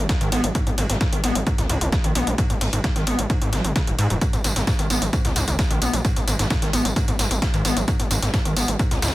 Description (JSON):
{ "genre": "driving peak-time techno", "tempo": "131 BPM", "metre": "4/4", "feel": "straight", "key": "G# minor", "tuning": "A4 = 440 Hz", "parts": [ { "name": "overdriven acid bass", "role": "riff", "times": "0.0-9.1 s", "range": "G#1 to B3", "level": "-25 LUFS", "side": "equal", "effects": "ensemble chorus, vintage 12-bit sampler grit, sidechain pumping, ping-pong delay" }, { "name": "gritty driven synth bass", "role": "bass", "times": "0.0-9.1 s", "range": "D#1 to G#2", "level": "-24 LUFS", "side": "equal", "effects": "sidechain pumping" }, { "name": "dusty soul sampler-style drum kit", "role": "drums", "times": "0.1-9.1 s", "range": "hi-hat, ride cymbal, snare drum", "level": "-32 LUFS", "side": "right 1 dB", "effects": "overdrive, high-pass filter on cymbals, high-pass filter on snare, high-pass filter on hats, high-pass filter on room" }, { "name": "electronic hi-hat and tambourine", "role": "drums", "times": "0.1-9.1 s", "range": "none", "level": "-28 LUFS", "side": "left 1 dB", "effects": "sidechain pumping on hats, sidechain pumping on cymbals, sidechain pumping on perc" }, { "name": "electronic kick drum", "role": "drums", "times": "0.1-8.9 s", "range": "none", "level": "-22 LUFS", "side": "equal", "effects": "none" } ], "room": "light reverb, digital ambience", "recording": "none", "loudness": "-19 LUFS", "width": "side -17 dB against mid", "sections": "0.0-9.1 A section", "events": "none", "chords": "0.0 G#m" }